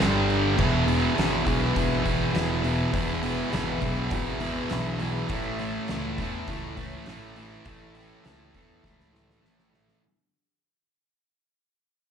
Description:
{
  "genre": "garage rock duo or trio",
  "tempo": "102 BPM",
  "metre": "4/4",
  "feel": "straight",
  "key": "E mixolydian",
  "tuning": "A4 = 441 Hz",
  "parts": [
    { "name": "overdriven combo organ", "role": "sustained chords", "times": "0.0-10.0 s", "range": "G4 to G5", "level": "-36 LUFS", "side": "left 1 dB", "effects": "none" },
    { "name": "thick fuzz guitar", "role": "riff", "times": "0.0-10.0 s", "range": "E2 to A3", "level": "-26 LUFS", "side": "equal", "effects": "distortion" },
    { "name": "growling picked electric bass", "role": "bass", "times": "0.0-9.9 s", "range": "E1 to E2", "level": "-31 LUFS", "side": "equal", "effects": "overdrive" },
    { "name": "oversized low-tuned drum kit", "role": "drums", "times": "0.0-10.0 s", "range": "crash cymbal, hi-hat, kick drum, snare drum", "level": "-32 LUFS", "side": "equal", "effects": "none" }
  ],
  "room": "light reverb",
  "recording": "live gig heard through the venue's PA, club reverb",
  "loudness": "-24 LUFS",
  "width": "side -8 dB against mid",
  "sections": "0.6-10.0 A section",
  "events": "fade-out 0.6-10.0; drum fill 8.8-10.0",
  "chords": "0.0 G5; 0.6 E; 5.3 A",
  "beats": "0.00 | 0.59 1.18 1.76 2.35 | 2.94 3.53 4.12 4.71 | 5.29 5.88 6.47 7.06 | 7.66 8.24 8.84 9.43"
}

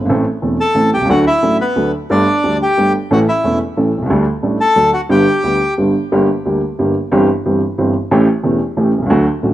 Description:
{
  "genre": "tango",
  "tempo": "180 BPM",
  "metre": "3/4",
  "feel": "rubato",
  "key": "G major, G harmonic minor from 6.1 s",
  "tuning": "A4 = 441 Hz",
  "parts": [
    { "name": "warm upright piano", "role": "accompaniment", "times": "0.0-9.5 s", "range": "E1 to A4", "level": "-13 LUFS", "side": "right 1 dB", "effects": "none" },
    { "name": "bandoneon", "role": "melody", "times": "0.6-5.7 s", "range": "B3 to A5", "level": "-15 LUFS", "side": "left 1 dB", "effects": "none" }
  ],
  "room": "light reverb, small room ambience",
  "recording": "dry, close 1970s-style studio recording",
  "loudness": "-12 LUFS",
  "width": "side -13 dB against mid",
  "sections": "0.0-6.1 A section; 6.1-9.5 B section",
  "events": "none",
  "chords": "0.1 Am; 1.1 D; 2.1 Gsus2; 3.1 A; 4.1 Dsus4; 4.8 D; 5.1 G; 6.1 Gm; 7.1 C/G; 8.1 A7",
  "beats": "| 0.09 0.42 0.75 | 1.09 1.42 1.76 | 2.10 2.44 2.77 | 3.11 3.44 3.77 | 4.10 4.43 4.76 | 5.09 5.43 5.77 | 6.11 6.45 6.79 | 7.12 7.45 7.79 | 8.12 8.45 8.77 | 9.10 9.44"
}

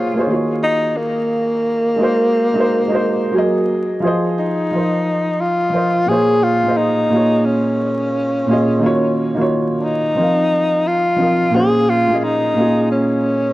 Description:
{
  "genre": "hip hop",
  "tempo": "88 BPM",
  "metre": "4/4",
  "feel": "swing 65% on 16ths",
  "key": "Bb minor",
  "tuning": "A4 = 440 Hz",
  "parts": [
    { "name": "breathy tenor saxophone", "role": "melody", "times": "0.0-13.5 s", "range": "Bb3 to Ab4", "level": "-17 LUFS", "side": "left 1 dB", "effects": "low-pass filter" },
    { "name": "felt-muted upright piano", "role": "accompaniment", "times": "0.0-13.5 s", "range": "Bb2 to F5", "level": "-17 LUFS", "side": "right 1 dB", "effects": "cassette tape, low-pass filter" }
  ],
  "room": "moderate plate reverb, RT60 2.9 s",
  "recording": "vinyl crackle",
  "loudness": "-14 LUFS",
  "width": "side -16 dB against mid",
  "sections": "0.0-4.7 A section; 4.7-13.5 B section",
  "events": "none",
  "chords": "0.3 Ebm11; 2.0 Ab7; 3.4 Gb6; 4.0 Fm7; 4.7 F7sus4; 6.1 Bbm7; 8.8 Ebm7; 10.2 F7sus4; 11.5 Bbm7",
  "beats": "0.62 1.31 | 1.99 2.67 3.35 4.03 | 4.71 5.40 6.08 6.76 | 7.44 8.12 8.81 9.49 | 10.17 10.85 11.53 12.21 | 12.90"
}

